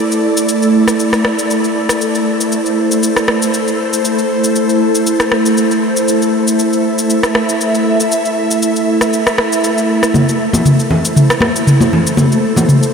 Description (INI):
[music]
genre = afro house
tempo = 118 BPM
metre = 4/4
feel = swing 54% on 16ths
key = A minor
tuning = A4 = 440 Hz
[part]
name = ethereal airy pad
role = sustained chords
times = 0.0-12.9 s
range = A3 to E5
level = -13 LUFS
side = right 1 dB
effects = ensemble chorus, built-in reverb
[part]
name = afro-pop drum kit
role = drums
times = 0.1-12.9 s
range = rim click, shaker, toms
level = -16 LUFS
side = equal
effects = none
[part]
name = warm sub bass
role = bass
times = 10.1-12.9 s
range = none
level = barely audible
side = none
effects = none
[part]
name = congas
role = percussion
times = 10.1-12.7 s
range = none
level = -15 LUFS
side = left 2 dB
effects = none
[sound]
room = wet huge ambient reverb, RT60 6.9 s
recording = dreamy mix soaked in reverb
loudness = -11 LUFS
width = side -6 dB against mid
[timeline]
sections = 0.0-10.1 A section; 10.1-12.9 B section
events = build-up 10.1-12.9; drum fill 10.1-12.9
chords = 0.0 Am